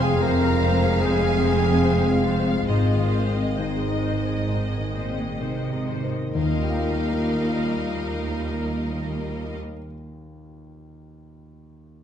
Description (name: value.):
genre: cinematic.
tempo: 63-76 BPM.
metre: 4/4.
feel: rubato.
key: Eb major.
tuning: A4 = 438 Hz.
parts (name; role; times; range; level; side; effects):
clear symphonic violin section; melody; 0.0-9.6 s; Eb5 to F5; -34 LUFS; left 2 dB; none.
clear symphonic violin section; second line; 0.0-9.6 s; Eb5 to Bb5; -34 LUFS; right 1 dB; none.
warm clarinet; second line; 0.0-9.6 s; Eb4 to Bb4; -30 LUFS; left 2 dB; none.
clear symphonic viola section; accompaniment; 0.0-9.6 s; G3 to F5; -32 LUFS; equal; none.
warm concert grand piano; accompaniment; 0.0-12.0 s; Eb2 to F5; -30 LUFS; left 2 dB; none.
dark French horn section; sustained chords; 0.0-9.6 s; G3 to F4; -29 LUFS; left 4 dB; none.
concert harp; arpeggios; 0.0-10.2 s; F2 to Ab5; -33 LUFS; left 6 dB; none.
rich symphonic cello section; bass; 0.0-9.6 s; Eb2 to C3; -28 LUFS; right 2 dB; none.
rich symphonic double bass section; bass; 0.0-9.6 s; F1 to Eb2; -28 LUFS; right 4 dB; none.
room: wet recital hall reverb, RT60 1.3 s.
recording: dark, warm production.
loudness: -21 LUFS.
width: side -9 dB against mid.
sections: 0.0-6.3 A section; 6.3-10.1 B section.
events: slowing down 0.0-6.3.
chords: 0.0 Fm; 2.7 Ab; 6.3 Ebadd9.